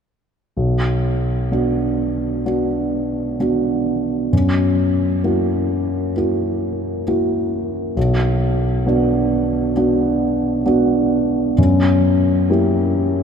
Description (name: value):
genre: classical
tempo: 66 BPM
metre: 4/4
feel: rubato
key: B minor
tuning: A4 = 440 Hz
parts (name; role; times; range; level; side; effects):
- dark grand piano; accompaniment; 0.6-13.2 s; B1 to G4; -16 LUFS; equal; none
room: wet cathedral reverb, RT60 7.0 s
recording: in a vast, echoing space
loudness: -16 LUFS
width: side -7 dB against mid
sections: 0.6-13.2 A section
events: none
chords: 0.6 Bm; 4.3 F#7; 8.0 Bm; 11.6 F#7b9